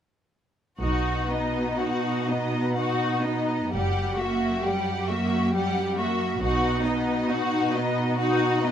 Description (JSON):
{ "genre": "classical, slow romantic movement for string orchestra", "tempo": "40-46 BPM (dotted quarters)", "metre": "6/8", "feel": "rubato", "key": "B major", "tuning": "A4 = 439 Hz", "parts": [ { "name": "rich symphonic violin section", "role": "melody", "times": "0.8-8.7 s", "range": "D#5 to F#5", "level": "-32 LUFS", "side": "left 4 dB", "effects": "none" }, { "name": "warm symphonic violin section", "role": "second line", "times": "0.8-8.7 s", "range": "D#4 to G4", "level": "-28 LUFS", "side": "left 1 dB", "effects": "none" }, { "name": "clear symphonic viola section", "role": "accompaniment", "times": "0.8-8.7 s", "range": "G3 to D#4", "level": "-28 LUFS", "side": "equal", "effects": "none" }, { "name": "rich symphonic double bass section", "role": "bass", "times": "0.8-7.2 s", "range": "F#1 to B1", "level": "-30 LUFS", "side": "right 1 dB", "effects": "none" }, { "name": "warm studio cello section", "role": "bass", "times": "0.8-8.7 s", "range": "F#2 to B2", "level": "-29 LUFS", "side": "right 2 dB", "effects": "none" } ], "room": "light reverb", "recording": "none", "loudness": "-23 LUFS", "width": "side -9 dB against mid", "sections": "0.8-8.7 A section", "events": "none", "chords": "0.8 B; 3.7 F#7b9; 6.4 B" }